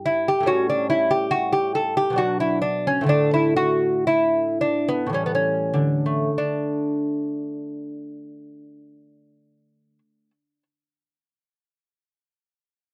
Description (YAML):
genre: classical, baroque-style dance for lute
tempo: 49-74 BPM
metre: 3/4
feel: rubato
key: D major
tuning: A4 = 440 Hz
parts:
  - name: lute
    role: solo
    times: 0.0-10.6 s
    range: G2 to A4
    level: -22 LUFS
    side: equal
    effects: none
room: little or no reverb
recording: dry, close 1970s-style studio recording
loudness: -22 LUFS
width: mono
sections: 0.0-6.4 A section; 6.4-10.0 B section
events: slowing down 0.0-6.4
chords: 0.5 A7; 2.2 Bm; 3.1 D5/A; 5.2 A7; 6.4 D5